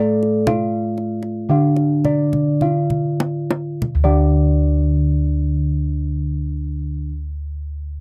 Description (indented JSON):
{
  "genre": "Javanese gamelan",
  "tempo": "47-63 BPM",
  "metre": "4/4",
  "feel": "straight",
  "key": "unclear",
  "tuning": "A4 = 440 Hz",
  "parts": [
    { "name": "gamelan-type bronze metallophone", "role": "melody", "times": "0.0-7.1 s", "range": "D4 to A4-30c", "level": "-26 LUFS", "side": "equal", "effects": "none" },
    { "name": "gamelan-type bronze metallophone", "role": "accompaniment", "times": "0.0-7.1 s", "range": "D3 to A3-30c", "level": "-24 LUFS", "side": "equal", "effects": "none" },
    { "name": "gamelan-type bossed gongs", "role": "arpeggios", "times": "0.0-7.1 s", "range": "D5 to F5-30c", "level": "-29 LUFS", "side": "equal", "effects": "none" },
    { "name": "gamelan-type bossed gongs", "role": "bass", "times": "0.0-7.0 s", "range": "D2 to A4-30c", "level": "-24 LUFS", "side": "equal", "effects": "none" },
    { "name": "kendang", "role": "percussion", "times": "0.2-4.4 s", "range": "none", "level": "-27 LUFS", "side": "equal", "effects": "none" }
  ],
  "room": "light reverb",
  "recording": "dry, close 1970s-style studio recording",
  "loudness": "-19 LUFS",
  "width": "mono",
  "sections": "0.0-3.8 A section; 3.8-8.0 B section",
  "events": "slowing down 0.0-3.8; drum fill 2.3-3.8",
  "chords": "none"
}